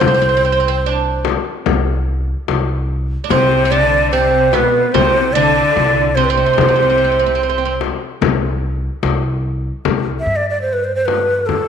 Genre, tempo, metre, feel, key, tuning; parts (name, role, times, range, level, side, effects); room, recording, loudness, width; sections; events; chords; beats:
Turkish makam ensemble; 73 BPM; 4/4; straight; A4 = 440 Hz
breathy mellow ney; melody; 0.0-11.7 s; A4 to E5; -15 LUFS; right 2 dB; slapback echo
oud; second line; 0.0-7.7 s; B3 to D4; -20 LUFS; right 9 dB
upright bass; bass; 0.0-11.6 s; C2 to G2; -20 LUFS; equal
frame drum; percussion; 0.0-11.7 s; -20 LUFS; left 10 dB
clear chamber cello section; second line; 3.3-7.8 s; B2 to D3; -19 LUFS; left 8 dB
wet echo chamber reverb, RT60 1.6 s, small room ambience; 1960s-style stereo with parts hard left and right; -13 LUFS; side -7 dB against mid
0.0-9.9 A section; 9.9-11.7 B section
| 0.02 0.84 1.66 2.48 | 3.30 4.12 4.94 5.76 | 6.58 7.40 8.21 9.03 | 9.85 10.67 11.49